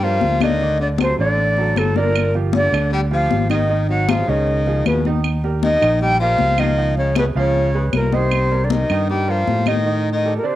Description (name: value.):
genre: Afro-Cuban jazz.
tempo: 156 BPM.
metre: 4/4.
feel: straight.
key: C minor.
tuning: A4 = 435 Hz.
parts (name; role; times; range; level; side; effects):
breathy silver concert flute; melody; 0.0-10.6 s; A4 to G5; -20 LUFS; equal; cassette tape.
breathy baritone saxophone; second line; 0.0-10.6 s; A2 to G3; -26 LUFS; left 6 dB; cassette tape.
clear baby grand piano; accompaniment; 0.0-10.6 s; Db3 to F5; -25 LUFS; right 6 dB; cassette tape.
fingered electric bass; bass; 0.0-10.4 s; G1 to A2; -20 LUFS; equal; none.
congas; percussion; 0.0-9.9 s; none; -24 LUFS; left 7 dB; none.
claves; percussion; 0.4-9.9 s; none; -28 LUFS; right 8 dB; none.
room: moderate spring reverb, RT60 1.3 s, studio reverb.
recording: home recording on cassette.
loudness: -15 LUFS.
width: side -14 dB against mid.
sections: 0.0-10.6 A section.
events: none.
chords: 0.0 Cm9 (rootless); 0.6 D; 2.2 G5; 3.7 Ab5; 4.5 Dbadd9; 5.2 Ebadd9; 6.8 Db9; 8.3 Cm7; 9.9 Cm13/A.